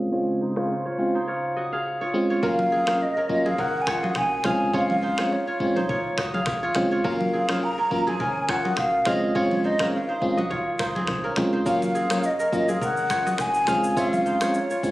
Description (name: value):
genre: afrobeats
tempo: 104 BPM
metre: 4/4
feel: swing 55% on 16ths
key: Db major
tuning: A4 = 440 Hz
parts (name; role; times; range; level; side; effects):
- FM electric piano; accompaniment; 0.0-14.9 s; Gb3 to F4; -24 LUFS; equal; chorus
- warm analog pad; sustained chords; 0.0-2.4 s; Db3 to C5; -35 LUFS; equal; chorus
- kora; riff; 0.0-14.9 s; C4 to F5; -28 LUFS; right 1 dB; ping-pong delay
- deep house drum kit; drums; 0.1-14.9 s; finger snaps, kick drum, rim click, shaker; -32 LUFS; equal; none
- breathy mellow jazz flute; melody; 2.4-14.9 s; Db5 to Bb5; -25 LUFS; equal; ping-pong delay
- warm sub bass; bass; 2.4-14.3 s; F1 to Db2; -41 LUFS; equal; none
- congas; percussion; 2.6-14.5 s; none; -33 LUFS; left 1 dB; none
room: light reverb, studio ambience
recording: recorded on a phone in the room, studio reverb, low-pass filter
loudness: -21 LUFS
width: side -17 dB against mid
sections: 0.0-2.4 A section; 2.4-14.9 B section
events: filter sweep 0.0-2.4; hi-hats muted 2.4-11.7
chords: 0.0 Dbmaj7; 2.4 Gbmaj7; 4.4 Dbmaj7; 7.0 Gbmaj7; 9.1 Dbmaj7; 11.7 Gbmaj7; 13.7 Dbmaj7